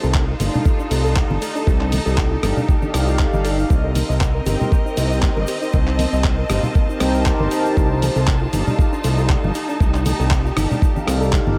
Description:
nu-disco, nu disco; 118 BPM; 4/4; swing 55% on 16ths; A4 = 440 Hz
clear symphonic string section; sustained chords; 0.0-11.6 s; C4 to A5; -28 LUFS; equal; sidechain pumping
soft round pluck; arpeggios; 0.0-11.6 s; A3 to Eb5; -31 LUFS; equal; chorus, sidechain pumping, tape echo
fat analog bass; bass; 0.0-11.6 s; G1 to C2; -22 LUFS; equal; tube saturation
tube shaker and congas; percussion; 0.0-11.6 s; -29 LUFS; equal
dusty soul sampler-style drum kit; drums; 0.1-11.4 s; handclaps, hi-hat, rim click; -30 LUFS; equal
electronic kick drum; drums; 0.1-11.4 s; -20 LUFS; equal
warm analog pad; accompaniment; 0.4-11.6 s; Eb4 to A5; -28 LUFS; equal; chorus, tape echo
light reverb, digital ambience; -18 LUFS; mono
0.0-11.6 A section
0.0 F13; 3.7 Cm7; 7.8 F13
0.15 0.65 1.16 | 1.67 2.18 2.69 3.20 | 3.71 4.21 4.72 5.23 | 5.74 6.25 6.76 7.26 | 7.77 8.28 8.79 9.30 | 9.81 10.31 10.82 11.33

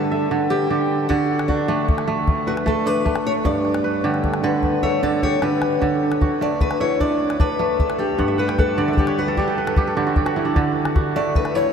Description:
west african traditional, West African string and xylophone music; 102 BPM (dotted quarters); 12/8; straight; D major; A4 = 442 Hz
picked old ladder-braced acoustic guitar; melody; 0.0-11.7 s; D4 to D5; -24 LUFS; left 4 dB
kora; arpeggios; 0.0-11.7 s; G2 to G5; -20 LUFS; right 2 dB; analog delay
calabash; percussion; 1.1-11.5 s; -23 LUFS; left 1 dB
wet huge ambient reverb, RT60 6.9 s; dreamy mix soaked in reverb; -18 LUFS; side -7 dB against mid
0.0-5.8 A section; 5.8-11.7 B section
steel-string acoustic guitar solo 0.0-5.8; drum fill 4.8-5.8; kora fill 8.2-10.6
0.0 G; 1.1 D; 3.5 G; 5.8 D; 8.2 G5; 10.6 D
0.51 | 1.10 1.69 2.28 2.87 | 3.46 4.05 4.64 5.23 | 5.82 6.41 7.00 7.59 | 8.19 8.78 9.37 9.97 | 10.56 11.16

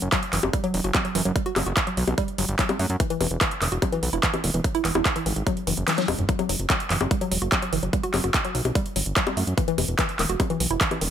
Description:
psychedelic trance; 146 BPM; 4/4; straight; A4 = 439 Hz
fat analog bass; bass; 0.0-11.1 s; E1 to F#2; -26 LUFS; equal; tube saturation
big-room dance drum kit; drums; 0.0-11.1 s; bongos, handclaps, hi-hat, snare drum, toms; -25 LUFS; equal; overdrive, small room ambience
woody wave-folded pluck; riff; 0.1-11.1 s; D#3 to G4; -28 LUFS; moving between left 9 dB and right 4 dB; chorus, auto-pan, sidechain pumping, tape echo
electronic kick drum; drums; 0.1-10.9 s; -25 LUFS; equal; overdrive, small room ambience
little or no reverb; -21 LUFS; side -9 dB against mid
0.0-11.1 A section
kick drops out 5.9-6.3; drum fill 5.9-6.3
0.0 Emadd9 (rootless); 3.0 E5; 6.3 Emadd9 (rootless); 9.6 E5
0.12 0.54 0.95 | 1.36 1.77 2.18 2.59 | 3.00 3.41 3.82 4.23 | 4.64 5.05 5.47 5.88 | 6.29 6.70 7.11 7.52 | 7.93 8.34 8.75 9.16 | 9.58 9.99 10.40 10.81

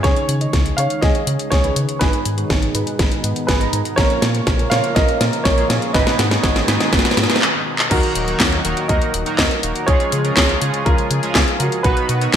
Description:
italo disco; 122 BPM; 4/4; straight; Eb minor; A4 = 440 Hz
dark baby grand piano; melody; 0.0-12.4 s; F4 to F5; -22 LUFS; right 1 dB; ping-pong delay
warm analog pad; sustained chords; 0.0-12.4 s; Bb2 to B4; -27 LUFS; left 1 dB; chorus, tremolo
chorused polysynth; stabs; 0.0-12.4 s; Ab2 to Bb5; -24 LUFS; right 3 dB
round analog bass; bass; 0.0-12.4 s; Eb1 to Db3; -22 LUFS; equal; tube saturation
electronic kick drum; drums; 0.0-12.4 s; -19 LUFS; equal
house drum kit; drums; 0.0-12.4 s; crash cymbal, handclaps, hi-hat, snare drum; -19 LUFS; equal; gated reverb
moderate plate reverb, RT60 2.0 s, digital ambience; bright 1980s-style digital production; -15 LUFS; side -9 dB against mid
0.0-7.9 A section; 7.9-12.4 B section
drum fill 0.0-7.4, 7.4-7.9; filter sweep on analog polysynth 0.0-7.9; filter sweep on analog synth pad 0.0-7.9; break 7.4-7.9
0.0 Dbsus2; 2.0 Abm; 4.0 Bbm; 5.9 Abm; 7.9 Ebm; 9.9 Db; 11.8 B
| 0.04 0.53 1.03 1.52 | 2.01 2.50 2.99 3.48 | 3.98 4.47 4.96 5.45 | 5.94 6.43 6.93 7.42 | 7.91 8.40 8.89 9.39 | 9.88 10.37 10.86 11.35 | 11.85 12.34

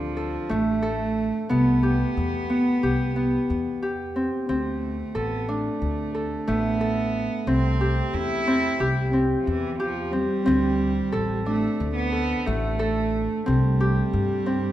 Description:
contemporary instrumental, chamber music in an uneven meter; 180 BPM (eighths); 9/8; straight; C major; A4 = 440 Hz
warm cello; melody; 0.0-14.7 s; E3 to E4; -29 LUFS; right 4 dB
Celtic harp; arpeggios; 0.0-14.7 s; A3 to A4; -24 LUFS; equal
upright bass; bass; 0.0-14.7 s; A1 to G2; -27 LUFS; equal
wet recital hall reverb, RT60 1.7 s; -22 LUFS; side -13 dB against mid
0.0-14.7 A section
0.0 Dm7; 1.5 Cmaj7; 4.5 D5; 7.5 C; 10.5 D5; 13.5 C5
0.17 0.50 0.83 1.17 | 1.50 1.83 2.16 2.49 2.83 3.16 3.49 3.82 4.15 | 4.49 4.82 5.15 5.48 5.81 6.15 6.48 6.81 7.14 | 7.47 7.81 8.14 8.47 8.80 9.14 9.47 9.80 10.13 | 10.47 10.80 11.13 11.47 11.80 12.13 12.46 12.80 13.13 | 13.46 13.80 14.13 14.46

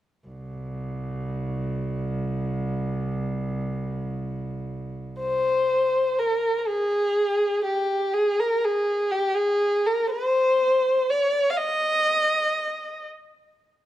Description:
turkish; free time; C makam ussak; A4 = 440 Hz
rich cello; drone; 0.3-5.3 s; C2; -29 LUFS; right 1 dB
dark violin; melody; 5.2-13.0 s; G4 to F5; -21 LUFS; equal
moderate recital hall reverb, RT60 1.7 s; -22 LUFS; side -13 dB against mid
0.3-5.2 A section; 5.2-13.9 B section
free time

